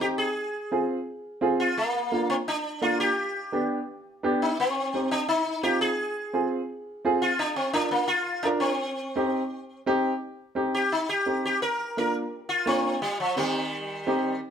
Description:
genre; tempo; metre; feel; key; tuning
latin; 170 BPM; 4/4; straight; C minor; A4 = 440 Hz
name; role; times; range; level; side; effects
sitar; melody; 0.0-14.4 s; Eb3 to Bb4; -26 LUFS; left 1 dB; none
warm upright piano; accompaniment; 0.0-14.3 s; Bb3 to Bb4; -26 LUFS; right 1 dB; none
room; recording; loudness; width
wet studio reverb, RT60 0.8 s; band playing live in one room; -24 LUFS; side -8 dB against mid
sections
0.0-10.2 A section; 10.2-14.5 B section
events
sitar solo 10.2-14.5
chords
0.4 Fm; 1.8 Bb; 3.2 G; 4.6 Cm; 6.0 Fm; 7.4 Bb; 8.8 Cm; 11.6 Bb; 13.0 Cm

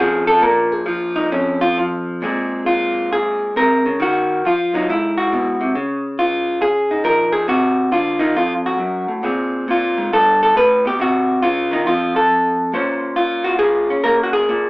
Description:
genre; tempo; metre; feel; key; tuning
solo jazz; 137 BPM; 4/4; swing 66% on 8ths, rubato; Bb minor; A4 = 440 Hz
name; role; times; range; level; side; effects
vintage hollow-body jazz guitar; solo; 0.0-14.7 s; F2 to C5; -15 LUFS; equal; none
room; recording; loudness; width
wet studio reverb, RT60 0.5 s; band playing live in one room, AM radio sound; -15 LUFS; side -23 dB against mid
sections
0.0-2.2 A section; 2.2-14.7 B section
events
hollow-body jazz guitar solo 0.0-2.2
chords
0.0 Bbmadd9; 2.2 Bb7sus2; 4.0 Ebmadd9; 4.9 Ab7alt; 5.8 Dbadd9; 7.5 Cdim; 8.3 F; 9.2 Bbsus2; 10.1 G; 11.0 Cdim; 11.9 N.C.; 12.7 Bbm9

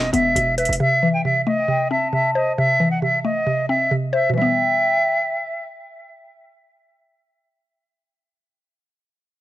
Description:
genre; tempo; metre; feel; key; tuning
hip hop, trap; 135 BPM; 4/4; half-time; E harmonic minor; A4 = 444 Hz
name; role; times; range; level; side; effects
silver concert flute; melody; 0.0-5.7 s; D#5 to G5; -19 LUFS; equal; low-pass filter, cassette tape, analog delay
mallet-like synth pluck; accompaniment; 0.0-7.8 s; B2 to C5; -21 LUFS; left 1 dB; chorus, phaser, low-pass filter, cassette tape
hard-hitting 808-style bass; bass; 0.0-0.8 s; E1; -26 LUFS; equal; none
electronic hi-hat; drums; 0.1-0.8 s; none; -26 LUFS; right 1 dB; overdrive, cassette tape
hollow clarinet-like synth lead; second line; 1.0-5.6 s; E5 to A5; -28 LUFS; left 1 dB; chorus, cassette tape, analog delay
room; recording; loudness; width
moderate studio reverb, RT60 0.6 s; home recording on cassette; -17 LUFS; side -15 dB against mid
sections
0.0-4.4 A section; 4.4-7.9 B section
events
none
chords
0.0 Em; 0.8 Am; 4.4 Em

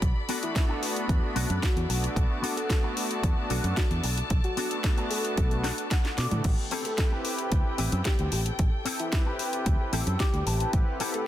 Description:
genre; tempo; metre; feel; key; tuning
nu-disco, nu disco; 112 BPM; 4/4; straight; unclear; A4 = 440 Hz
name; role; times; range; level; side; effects
warm chamber string section; sustained chords; 0.0-11.3 s; A4 to B5; -38 LUFS; left 1 dB; sidechain pumping
fingered electric bass; bass; 0.0-10.8 s; A1 to B2; -29 LUFS; equal; none
electronic kick drum; drums; 0.0-10.8 s; none; -26 LUFS; equal; overdrive, small room ambience
house drum kit; drums; 0.0-11.2 s; crash cymbal, hi-hat, snare drum, toms; -33 LUFS; left 2 dB; overdrive, small room ambience
warm analog pad; accompaniment; 0.3-11.3 s; A3 to B4; -34 LUFS; equal; chorus, sidechain pumping, dub echo
electric guitar with an envelope filter; riff; 0.3-11.2 s; B3 to A5; -35 LUFS; left 2 dB; ensemble chorus, dub echo
soft octave-layered synth lead; melody; 0.4-11.3 s; E4 to A4; -37 LUFS; left 2 dB; chorus, cassette tape, dub echo
room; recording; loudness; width
light reverb; dense, heavily limited modern master; -25 LUFS; side -12 dB against mid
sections
0.0-11.3 A section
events
clean electric guitar fill 5.4-6.4, 9.9-10.7; drum fill 6.0-6.4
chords
0.0 Bm7; 6.4 Am7

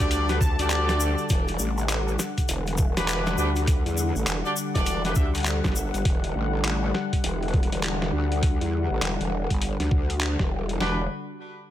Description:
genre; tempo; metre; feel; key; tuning
glitch hop; 101 BPM; 4/4; swing 62% on 16ths; E minor; A4 = 440 Hz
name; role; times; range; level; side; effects
warm analog pad; sustained chords; 0.0-11.1 s; D3 to F#5; -31 LUFS; left 2 dB; chorus, sidechain pumping
bright horn section; stabs; 0.0-5.3, 10.8-11.0 s; D4 to E5; -30 LUFS; equal; vintage 12-bit sampler grit, sidechain pumping, digital delay
growl bass; bass; 0.0-11.1 s; E1 to E2; -26 LUFS; equal; chorus, tube saturation
boom bap sampler-style drum kit; drums; 0.0-11.0 s; kick drum, snare drum; -24 LUFS; equal; none
boom bap sampler-style drum kit; drums; 0.0-10.8 s; handclaps, hi-hat, snare drum; -30 LUFS; equal; none
egg shaker; percussion; 0.0-6.0 s; none; -35 LUFS; left 4 dB; none
plucky unison lead; melody; 0.4-1.3 s; A5; -37 LUFS; equal; vintage 12-bit sampler grit, digital delay
room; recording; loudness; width
digital ambience; none; -22 LUFS; side -12 dB against mid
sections
0.0-1.3 A section; 1.3-10.8 B section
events
drop 0.0-1.3; kick drops out 0.7-1.3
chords
0.0 Em9 (rootless); 1.3 Em9

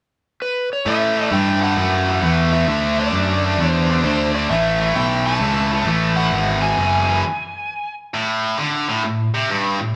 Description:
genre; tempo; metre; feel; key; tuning
rock; 132 BPM; 4/4; swing 66% on 8ths; unclear; A4 = 441 Hz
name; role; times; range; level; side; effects
overdriven slide guitar; melody; 0.4-7.9 s; B4 to A5; -24 LUFS; equal; none
tight distorted guitar; riff; 0.9-9.9 s; E2 to D4; -22 LUFS; equal; distortion
fuzz picked electric bass; bass; 0.9-7.2 s; F#1 to A2; -22 LUFS; equal; overdrive
room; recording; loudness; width
moderate large studio reverb, RT60 1.4 s; band playing live in one room; -19 LUFS; mono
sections
0.9-8.1 A section; 8.1-10.0 B section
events
stop 7.2-8.1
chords
0.0 N.C.; 0.9 A5; 2.7 D; 4.5 A; 6.3 E; 8.1 Gsus2

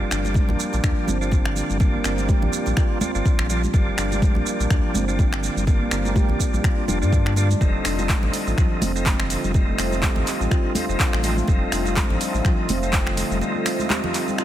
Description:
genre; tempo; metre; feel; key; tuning
afro house; 124 BPM; 4/4; swing 56% on 16ths; G minor; A4 = 441 Hz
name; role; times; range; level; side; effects
percussive tonewheel organ; stabs; 0.0-14.4 s; Bb3 to Eb5; -28 LUFS; right 2 dB; overdrive, fast rotary speaker, sidechain pumping, digital delay
round analog bass; bass; 0.0-13.4 s; F1 to G2; -25 LUFS; equal; sidechain pumping
handpan; arpeggios; 0.1-14.4 s; D3 to G4; -27 LUFS; equal; sidechain pumping, low-pass filter, digital delay
deep house drum kit; drums; 0.1-14.4 s; finger snaps, handclaps, hi-hat, shaker; -28 LUFS; equal; none
congas; percussion; 0.2-14.4 s; none; -30 LUFS; equal; none
electronic kick drum; drums; 0.4-13.0 s; none; -20 LUFS; equal; none
warm analog pad; sustained chords; 7.6-14.4 s; A3 to F4; -30 LUFS; left 2 dB; chorus, sidechain pumping
room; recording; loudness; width
digital ambience; none; -19 LUFS; side -12 dB against mid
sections
0.0-14.4 A section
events
filter sweep on handpan 0.0-14.4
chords
0.0 Gm7; 7.6 F7

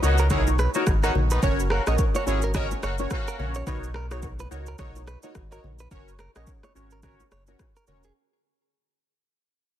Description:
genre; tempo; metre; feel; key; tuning
afrobeats; 107 BPM; 4/4; swing 58% on 16ths; unclear; A4 = 440 Hz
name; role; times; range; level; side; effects
clear horn section; second line; 0.0-3.5 s; D#3 to A#4; -32 LUFS; left 1 dB; none
warm analog keys; accompaniment; 0.0-8.1 s; C#4 to C#5; -30 LUFS; equal; chorus, phaser
sub bass with octave; bass; 0.0-8.1 s; E1 to C#2; -26 LUFS; equal; none
afro-pop drum kit; drums; 0.0-8.1 s; kick drum, rim click, shaker; -28 LUFS; equal; soft clipping on snare
bongos and congas; percussion; 0.0-8.2 s; none; -35 LUFS; left 5 dB; none
direct-recorded clean electric guitar; riff; 0.2-8.1 s; G#4 to D#5; -32 LUFS; right 5 dB; ping-pong delay
room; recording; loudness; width
little or no reverb; dense, heavily limited modern master; -22 LUFS; side -11 dB against mid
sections
0.0-8.2 A section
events
fade-out 0.0-8.2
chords
0.0 Bmaj7; 1.4 F#; 3.7 Bmaj7; 5.9 F#

